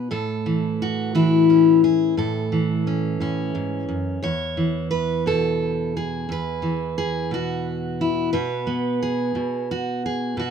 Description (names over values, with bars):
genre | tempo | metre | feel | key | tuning
folk, solo fingerstyle acoustic guitar | 58 BPM (dotted quarters) | 6/8 | straight | E major | A4 = 438 Hz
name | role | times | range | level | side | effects
fingerpicked steel-string acoustic guitar | solo | 0.0-10.5 s | E2 to C#5 | -20 LUFS | left 1 dB | none
room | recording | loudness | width
light reverb | minimal, uncompressed stereo recording | -20 LUFS | side -6 dB against mid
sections
0.0-10.5 A section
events
none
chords
0.1 A; 4.2 E; 8.3 B5